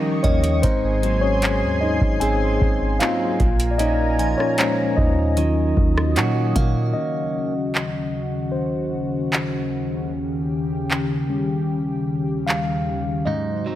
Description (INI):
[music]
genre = contemporary R&B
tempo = 76 BPM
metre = 4/4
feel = straight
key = Eb dorian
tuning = A4 = 440 Hz
[part]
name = mellow tine electric piano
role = accompaniment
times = 0.0-13.8 s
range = Ab2 to Ab5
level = -23 LUFS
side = left 2 dB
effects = medium stereo tremolo
[part]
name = lush unison pad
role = sustained chords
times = 0.0-13.8 s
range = Eb2 to Db6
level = -26 LUFS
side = left 1 dB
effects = chorus
[part]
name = direct-recorded clean electric guitar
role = arpeggios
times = 0.0-7.5, 13.3-13.8 s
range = Ab2 to Gb4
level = -26 LUFS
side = right 6 dB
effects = digital delay
[part]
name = glassy synth bell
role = texture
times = 0.0-7.3 s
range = Bb4 to Ab5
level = -34 LUFS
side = right 2 dB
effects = chorus, digital delay
[part]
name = warm 808-style bass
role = bass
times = 0.2-6.9 s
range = Ab1 to Bb2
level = -22 LUFS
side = equal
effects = none
[part]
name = booming analog drum machine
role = drums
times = 0.2-12.7 s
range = handclaps, hi-hat, kick drum, rim click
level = -22 LUFS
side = equal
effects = none
[sound]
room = light reverb, digital ambience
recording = none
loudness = -19 LUFS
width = side -13 dB against mid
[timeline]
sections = 0.0-7.0 A section; 7.0-13.8 B section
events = tine electric piano solo 0.0-7.0, 7.0-13.8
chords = 0.0 Eb7; 0.6 Ab7; 3.4 Bbm7; 5.4 Ebm7; 10.1 Eb7